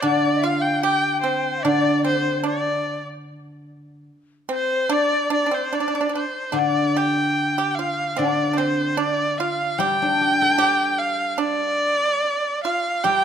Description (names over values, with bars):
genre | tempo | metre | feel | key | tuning
chinese traditional, Chinese chamber ensemble | 74 BPM | 2/4 | straight | D yu mode | A4 = 438 Hz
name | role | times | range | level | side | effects
clear erhu | melody | 0.0-13.2 s | C5 to G5 | -22 LUFS | equal | none
large dizi | second line | 0.0-6.3, 13.1-13.2 s | C5 to G5 | -26 LUFS | left 6 dB | none
pipa | second line | 0.0-13.2 s | C4 to G4 | -26 LUFS | right 7 dB | none
guzheng | accompaniment | 0.0-4.1, 6.5-13.2 s | D3 to D5 | -24 LUFS | left 1 dB | none
room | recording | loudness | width
moderate recital hall reverb, RT60 1.7 s | close, detailed microphones | -19 LUFS | side -8 dB against mid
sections
0.0-6.6 A section; 6.6-13.2 B section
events
none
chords
none